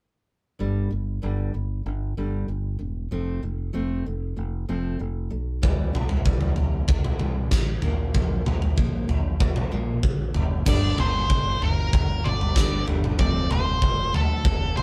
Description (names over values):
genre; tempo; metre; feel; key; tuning
quiet-loud alternative rock; 95 BPM; 4/4; straight; G dorian; A4 = 440 Hz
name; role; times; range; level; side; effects
fingerpicked steel-string acoustic guitar; arpeggios; 0.6-14.8 s; G2 to C4; -33 LUFS; equal; none
fingered electric bass; bass; 0.6-14.8 s; E1 to D2; -31 LUFS; equal; none
big rock drum kit; drums; 5.6-14.8 s; crash cymbal, kick drum, snare drum, toms; -25 LUFS; equal; none
octave-fuzz lead guitar; melody; 10.7-14.8 s; A4 to D5; -29 LUFS; equal; distortion
room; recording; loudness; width
moderate small room reverb, RT60 0.5 s; band playing live in one room; -24 LUFS; mono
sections
0.6-10.7 A section; 10.7-14.8 B section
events
none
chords
0.6 G5; 3.1 F; 5.6 C; 7.8 Bb5; 10.7 Gm; 13.2 F